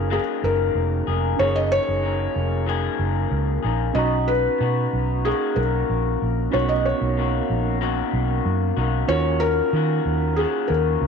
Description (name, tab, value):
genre	indie pop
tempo	94 BPM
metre	4/4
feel	straight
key	unclear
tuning	A4 = 438 Hz
part	felt-muted upright piano	melody	0.0-11.1 s	G#4 to D#5	-24 LUFS	left 2 dB	wide subtle chorus, slapback echo
part	electric guitar through a small old amp	accompaniment	0.0-11.1 s	B2 to G#4	-26 LUFS	left 13 dB	wide subtle chorus, warbly pitch drift
part	mellow tine electric piano	accompaniment	0.0-11.1 s	B3 to A#5	-28 LUFS	right 15 dB	medium stereo tremolo, cassette tape
part	vintage muted fingered electric bass	bass	0.0-11.1 s	E#1 to D#3	-23 LUFS	right 1 dB	none
room	light reverb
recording	1960s-style stereo with parts hard left and right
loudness	-19 LUFS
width	side -6 dB against mid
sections	0.0-11.1 A section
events	none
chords	0.0 F#69; 4.0 Bmaj7; 9.1 D#m7